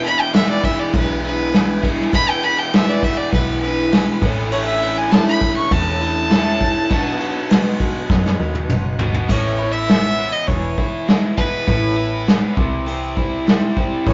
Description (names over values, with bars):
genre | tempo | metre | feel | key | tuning
folk rock and heartland rock | 100 BPM | 4/4 | straight | E major | A4 = 440 Hz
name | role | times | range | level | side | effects
rich fiddle | melody | 0.0-14.1 s | B4 to C#6 | -24 LUFS | equal | none
picked twelve-string acoustic guitar | accompaniment | 0.0-14.1 s | E2 to F#4 | -26 LUFS | equal | none
tonewheel organ | sustained chords | 0.0-9.3, 14.1 s | G#3 to B4 | -39 LUFS | equal | none
overdriven electric guitar | riff | 0.0-14.1 s | E2 to F#4 | -29 LUFS | equal | spring reverb
deep dub picked electric bass | bass | 0.0-14.1 s | E1 to F#2 | -26 LUFS | equal | none
soft brush drum kit | drums | 0.0-14.1 s | crash cymbal, hi-hat, kick drum, ride cymbal, snare drum, toms | -20 LUFS | equal | none
room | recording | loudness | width
light reverb | rough rehearsal-room recording, nothing above 7.6 kHz | -18 LUFS | mono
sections
0.0-9.3 A section; 9.3-14.1 B section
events
fiddle solo 0.0-9.3; drum fill 8.1-9.3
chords
0.0 E; 4.2 A; 6.9 B; 9.3 Aadd9; 10.5 E; 11.7 Aadd9; 12.6 C